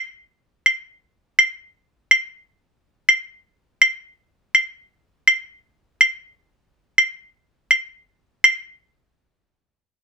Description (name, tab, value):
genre	latin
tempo	123 BPM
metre	4/4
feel	straight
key	none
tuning	none
part	claves	percussion	0.7-8.6 s	none	-12 LUFS	equal	none
room	moderate small room reverb, RT60 0.5 s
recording	close, detailed microphones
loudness	-16 LUFS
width	side -6 dB against mid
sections	0.7-8.4 A section; 8.4-10.0 B section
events	none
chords	none